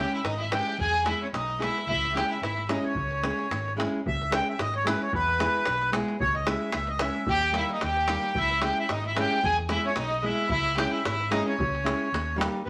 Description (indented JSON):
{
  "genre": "balkan folk, Balkan wedding band",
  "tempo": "111 BPM",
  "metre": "2/4",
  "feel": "swing 54% on 16ths",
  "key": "unclear",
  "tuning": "A4 = 441 Hz",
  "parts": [
    { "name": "accordion", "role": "melody", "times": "0.0-12.7 s", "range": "B4 to G#5", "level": "-30 LUFS", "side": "equal", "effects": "none" },
    { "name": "clear violin", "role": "second line", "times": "0.0-3.7, 7.3-12.7 s", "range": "Cb4 to G#4", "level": "-35 LUFS", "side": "equal", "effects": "none" },
    { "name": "nylon-string guitar", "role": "accompaniment", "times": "0.0-12.6 s", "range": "G3 to G#4", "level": "-34 LUFS", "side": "equal", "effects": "none" },
    { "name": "picked electric bass", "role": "bass", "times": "0.0-12.7 s", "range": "G#1 to E2", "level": "-36 LUFS", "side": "equal", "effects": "none" },
    { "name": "davul", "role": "percussion", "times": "0.2-12.6 s", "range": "none", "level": "-35 LUFS", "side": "equal", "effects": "none" }
  ],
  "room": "wet studio reverb, RT60 0.6 s",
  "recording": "none",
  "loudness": "-27 LUFS",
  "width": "mono",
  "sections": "0.0-4.0 A section; 4.0-12.7 A section",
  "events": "none",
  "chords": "0.0 C#m; 0.8 E; 1.9 C#m; 5.1 E; 6.2 C#m; 7.3 D#; 8.4 C#m; 9.4 E; 10.5 C#m; 12.1 D#7",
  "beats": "0.25 | 0.79 1.33 | 1.88 2.42 | 2.96 3.50 | 4.04 4.58 | 5.12 5.66 | 6.20 6.74 | 7.28 7.82 | 8.36 8.90 | 9.43 9.97 | 10.51 11.05 | 11.59 12.12 | 12.66"
}